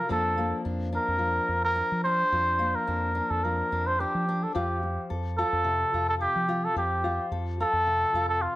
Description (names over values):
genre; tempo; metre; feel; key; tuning
highlife guitar band; 108 BPM; 4/4; swing 54% on 16ths; F major; A4 = 440 Hz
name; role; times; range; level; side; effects
trumpet with cup mute; melody; 0.0-8.6 s; F4 to C5; -26 LUFS; equal; plate reverb
fingerpicked steel-string acoustic guitar; accompaniment; 0.0-8.6 s; C3 to A4; -34 LUFS; left 3 dB; plate reverb
deep dub fingered electric bass; bass; 0.1-8.5 s; F2 to F3; -32 LUFS; right 1 dB; none
room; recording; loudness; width
moderate studio reverb, RT60 0.6 s; none; -24 LUFS; side -16 dB against mid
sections
0.0-8.6 A section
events
none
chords
0.1 Bb/F; 4.5 Fadd9